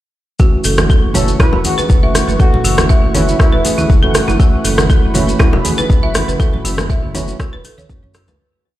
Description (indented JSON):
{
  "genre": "afro house",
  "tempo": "120 BPM",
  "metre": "4/4",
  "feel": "swing 53% on 16ths",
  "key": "F# minor",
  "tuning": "A4 = 440 Hz",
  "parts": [
    { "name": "warm analog pad", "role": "sustained chords", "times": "0.4-8.4 s", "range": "A3 to C#6", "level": "-24 LUFS", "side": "right 2 dB", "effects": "chorus, sidechain pumping" },
    { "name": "folk marimba with hard mallets", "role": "arpeggios", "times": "0.4-8.4 s", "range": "E4 to E5", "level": "-21 LUFS", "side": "right 2 dB", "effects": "sidechain pumping, digital delay" },
    { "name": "tine electric piano", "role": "stabs", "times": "0.4-8.4 s", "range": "E3 to G#4", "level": "-21 LUFS", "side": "right 1 dB", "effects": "overdrive, fast stereo tremolo, sidechain pumping, digital delay" },
    { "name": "electronic kick drum", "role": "drums", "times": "0.4-8.0 s", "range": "none", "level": "-11 LUFS", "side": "equal", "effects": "none" },
    { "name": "maracas", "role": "percussion", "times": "0.4-8.4 s", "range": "none", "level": "-26 LUFS", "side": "left 3 dB", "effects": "none" },
    { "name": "dark detuned saw bass", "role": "bass", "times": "0.6-8.4 s", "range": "E1 to F#2", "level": "-18 LUFS", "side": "equal", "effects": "sidechain pumping" },
    { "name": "afro-pop drum kit", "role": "drums", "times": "0.7-8.3 s", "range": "hi-hat, rim click", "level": "-19 LUFS", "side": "equal", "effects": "none" },
    { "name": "bongos", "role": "percussion", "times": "0.8-8.4 s", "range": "none", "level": "-25 LUFS", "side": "left 5 dB", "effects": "none" },
    { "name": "congas", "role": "percussion", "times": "0.8-8.1 s", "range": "none", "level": "-21 LUFS", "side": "right 2 dB", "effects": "none" },
    { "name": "expressive synth lead", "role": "melody", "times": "1.1-3.9 s", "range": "E4 to B4", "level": "-23 LUFS", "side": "right 1 dB", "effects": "wide subtle chorus, digital delay" }
  ],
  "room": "small room ambience",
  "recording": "played on a big sound system in a bare room, large studio reverb",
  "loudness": "-10 LUFS",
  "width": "side -14 dB against mid",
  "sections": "0.4-8.4 drop",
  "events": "drop 0.4-8.4; fade-out 5.7-8.4",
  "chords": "0.4 F#m7"
}